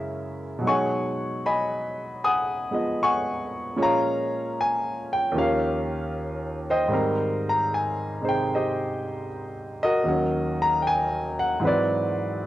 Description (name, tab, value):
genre	jazz ballad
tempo	77 BPM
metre	4/4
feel	swing 67% on 8ths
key	unclear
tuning	A4 = 440 Hz
part	clear concert grand piano	solo	0.0-12.5 s	Eb2 to D#6	-23 LUFS	equal	cassette tape
room	light reverb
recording	home recording on cassette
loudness	-23 LUFS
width	side -14 dB against mid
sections	0.0-12.5 A section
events	none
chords	0.0 Gb9; 0.6 B69; 3.8 Bbm7; 5.3 Eb7; 6.9 Abmaj7; 10.0 Ebm7; 11.6 Ab7alt